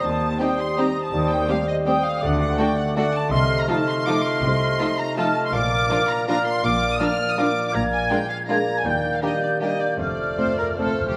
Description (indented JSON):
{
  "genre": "classical, orchestral ballroom waltz",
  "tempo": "163 BPM",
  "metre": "3/4",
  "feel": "uneven beats, rubato",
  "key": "Bb major from 3.3 s",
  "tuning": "A4 = 441 Hz",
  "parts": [
    { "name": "warm symphonic violin section", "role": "melody", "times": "0.0-11.2 s", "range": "C5 to F6", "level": "-29 LUFS", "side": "equal", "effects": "none" },
    { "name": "bright flute section", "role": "second line", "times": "0.0-11.2 s", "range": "D6 to Ab6", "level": "-30 LUFS", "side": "equal", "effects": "none" },
    { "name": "mellow clarinet", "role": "second line", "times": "0.0-11.2 s", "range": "C5 to Eb5", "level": "-32 LUFS", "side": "equal", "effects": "none" },
    { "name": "mellow bassoon", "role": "accompaniment", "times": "0.0-11.2 s", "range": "G3 to Bb3", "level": "-30 LUFS", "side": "equal", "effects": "none" },
    { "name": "concert harp", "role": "arpeggios", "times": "0.0-11.2 s", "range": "Bb2 to C5", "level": "-32 LUFS", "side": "equal", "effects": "none" },
    { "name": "rich symphonic cello section", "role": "bass", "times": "0.0-10.3 s", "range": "D2 to C3", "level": "-32 LUFS", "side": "equal", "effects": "none" },
    { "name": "rich symphonic double bass section", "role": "bass", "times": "0.0-10.3 s", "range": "F1 to Eb2", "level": "-32 LUFS", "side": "equal", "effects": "none" },
    { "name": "warm symphonic violin section", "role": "second line", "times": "0.4-11.2 s", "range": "F4 to C5", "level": "-33 LUFS", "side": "equal", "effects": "none" },
    { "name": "warm studio viola section", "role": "accompaniment", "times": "0.4-10.9 s", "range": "F3 to Eb4", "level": "-32 LUFS", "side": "equal", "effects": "none" },
    { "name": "dark French horn section", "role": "sustained chords", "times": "0.4-10.9 s", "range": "G3 to Eb4", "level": "-33 LUFS", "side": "equal", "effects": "none" },
    { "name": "timpani", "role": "percussion", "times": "5.5-6.0, 10.0-11.1 s", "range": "F2 to Bb2", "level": "-35 LUFS", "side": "equal", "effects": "none" }
  ],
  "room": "wet scoring stage reverb, RT60 1.5 s",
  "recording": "none",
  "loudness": "-22 LUFS",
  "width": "mono",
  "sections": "0.0-11.2 A section",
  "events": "timpani fill 10.0-11.2",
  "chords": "0.0 Cm/Eb; 1.1 Am7b5/Eb; 2.2 D; 3.3 F7/C; 5.5 Bb; 7.7 Bb7; 8.9 Ebmaj7; 10.0 F",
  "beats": "| 0.03 0.40 0.78 | 1.13 1.49 1.87 | 2.23 2.59 2.97 | 3.32 3.69 4.07 | 4.43 4.79 5.17 | 5.53 5.89 6.28 | 6.64 7.00 7.38 | 7.74 8.10 8.49 | 8.85 9.22 9.61 | 9.99 10.38 10.79"
}